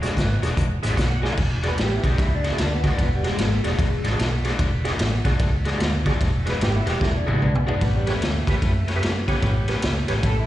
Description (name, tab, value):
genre	electric blues shuffle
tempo	149 BPM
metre	4/4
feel	swing 63% on 8ths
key	E mixolydian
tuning	A4 = 439 Hz
part	electric slide guitar	second line	0.0-0.6 s	G#4 to C#5	-38 LUFS	right 1 dB	slapback echo
part	tonewheel organ	accompaniment	0.0-10.2 s	F#4 to G#5	-32 LUFS	right 4 dB	slow rotary speaker, overdrive, chorus vibrato, slapback echo
part	crunchy overdriven guitar	riff	0.0-10.3 s	E3 to B4	-30 LUFS	left 5 dB	slapback echo
part	vintage muted fingered electric bass	bass	0.0-10.4 s	E1 to G2	-24 LUFS	equal	none
part	raw garage drum kit	drums	0.0-10.4 s	crash cymbal, hi-hat, kick drum, ride cymbal, snare drum, toms	-23 LUFS	equal	none
part	electric guitar through a small old amp	melody	1.7-4.1, 6.5-10.5 s	G3 to B4	-29 LUFS	equal	slapback echo
part	clear horn section	stabs	7.8-9.7 s	B3 to G4	-34 LUFS	right 1 dB	slapback echo, analog delay
room	small room ambience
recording	live gig heard through the venue's PA, recital hall reverb, nothing above 10.5 kHz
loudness	-19 LUFS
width	side -14 dB against mid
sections	0.0-1.4 A section; 1.4-10.5 B section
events	tonewheel organ fill 0.6-1.4; drum fill 1.2, 7.0-7.8; clean electric guitar solo 1.4-10.5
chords	0.0 E9; 7.8 A9